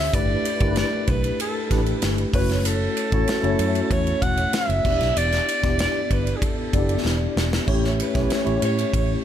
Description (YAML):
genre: polished 1980s jazz-funk pop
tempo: 95 BPM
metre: 4/4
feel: straight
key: unclear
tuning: A4 = 440 Hz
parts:
  - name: warm alto saxophone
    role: melody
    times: 0.0-9.2 s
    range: G#4 to F#5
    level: -26 LUFS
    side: right 1 dB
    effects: none
  - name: mellow tine electric piano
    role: accompaniment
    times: 0.0-9.2 s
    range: A3 to D5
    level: -25 LUFS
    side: left 2 dB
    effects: medium stereo tremolo, ensemble chorus
  - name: vintage muted fingered electric bass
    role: bass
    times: 0.0-9.2 s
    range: E1 to A2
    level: -25 LUFS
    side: equal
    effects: none
  - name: modern studio drum kit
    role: drums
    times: 0.1-9.1 s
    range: crash cymbal, hi-hat, kick drum, ride cymbal, snare drum, splash cymbal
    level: -25 LUFS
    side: equal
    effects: none
room: light reverb, small room ambience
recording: none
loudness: -19 LUFS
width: side -10 dB against mid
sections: 0.0-9.2 A section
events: drum fill 7.0-7.7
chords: 0.1 G69; 2.3 F#m7; 4.8 Em7; 7.7 A7